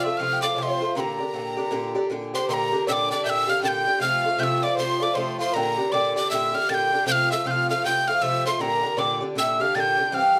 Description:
celtic folk, Celtic hornpipe; 157 BPM; 4/4; swing 61% on 8ths; G dorian; A4 = 440 Hz
breathy tin whistle; melody; 0.0-10.4 s; Bb5 to A6; -26 LUFS; equal
dark fiddle; second line; 0.0-10.4 s; Bb4 to G5; -31 LUFS; equal
Irish bouzouki; accompaniment; 0.0-10.4 s; G2 to G4; -28 LUFS; equal
wet studio reverb, RT60 0.6 s; dark, warm production; -23 LUFS; mono
0.0-2.5 A section; 2.5-10.4 B section
0.0 F; 1.0 Gm; 4.0 F; 5.5 Gm; 7.1 F; 8.6 Gm

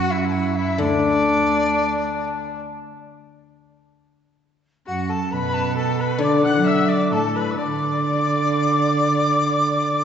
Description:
chinese traditional, Chinese chamber ensemble; 66 BPM; 4/4; rubato; D gong mode; A4 = 440 Hz
dizi; melody; 0.0-10.0 s; D5 to F#6; -23 LUFS; left 1 dB
rich erhu; second line; 0.0-10.0 s; D4 to F#5; -24 LUFS; left 3 dB
warm cello; second line; 0.0-10.0 s; D2 to F#3; -23 LUFS; right 4 dB
guzheng; accompaniment; 0.8-9.0 s; D3; -22 LUFS; left 4 dB
wet concert hall reverb, RT60 2.3 s; heard from further back in the room, nothing above 8.0 kHz; -18 LUFS; side -8 dB against mid
0.0-10.0 A section

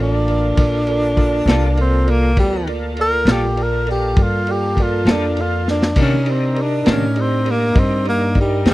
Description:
slow blues; 67 BPM (dotted quarters); 12/8; straight; G minor; A4 = 443 Hz
breathy tenor saxophone; melody; 0.0-8.7 s; G3 to Bb4; -19 LUFS; equal
tine electric piano; accompaniment; 0.0-8.7 s; Eb4 to Eb5; -26 LUFS; right 7 dB; auto-pan
tonewheel organ; sustained chords; 0.0-8.7 s; Bb3 to Bb4; -26 LUFS; left 1 dB; slow rotary speaker, chorus vibrato
upright bass; bass; 0.0-8.7 s; A1 to C3; -20 LUFS; equal
crunchy breakbeat drum kit; drums; 0.3-8.7 s; crash cymbal, kick drum, ride cymbal, snare drum; -17 LUFS; equal
clean electric guitar; accompaniment; 1.5-8.7 s; C3 to A4; -23 LUFS; left 3 dB; harmonic tremolo
little or no reverb; dry, close 1970s-style studio recording; -14 LUFS; side -17 dB against mid
0.0-8.7 A section
tenor saxophone solo 0.0-8.7; drum fill 5.7
0.0 Gm9; 6.0 Cm9

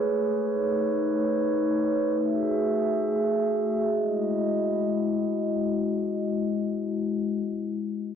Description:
hip hop; free time; E major; A4 = 442 Hz
glass harmonica; solo; 0.0-7.5 s; G#3 to E5; -24 LUFS; equal; low-pass filter, ping-pong delay
light reverb; worn, warbling old tape, cassette tape, warbly pitch drift; -24 LUFS; side -8 dB against mid
0.0-3.9 A section; 3.9-7.3 B section
0.5 B9; 2.2 F#m9; 3.9 Emaj9

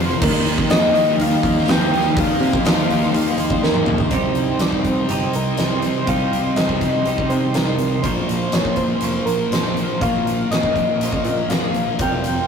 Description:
rock, shoegaze and dream pop; 122 BPM; 4/4; straight; A4 = 440 Hz
sweeping resonant pad; sustained chords; 0.0-12.5 s; G4 to C6; -28 LUFS; right 3 dB; chorus
thick fuzz guitar; riff; 0.0-12.5 s; F2 to Eb4; -22 LUFS; left 2 dB; distortion
twelve-string electric guitar; riff; 0.0-12.5 s; Bb2 to C5; -26 LUFS; right 4 dB
overdriven picked electric bass; bass; 0.0-12.4 s; F1 to C3; -26 LUFS; right 1 dB
tambourine; percussion; 0.1-4.1 s; -41 LUFS; right 10 dB
soft struck synth lead; melody; 0.2-12.5 s; Bb4 to G5; -23 LUFS; left 2 dB; chorus
huge arena drum kit; drums; 0.2-12.4 s; crash cymbal, hi-hat, kick drum, snare drum, toms; -21 LUFS; right 1 dB
wet booth ambience, RT60 0.2 s; rough rehearsal-room recording, warm saturation; -16 LUFS; side -6 dB against mid
0.0-4.1 A section; 4.1-12.5 B section
drum fill 3.6-4.1
0.2 Ebadd9; 4.1 Cm; 8.0 Bbmadd9

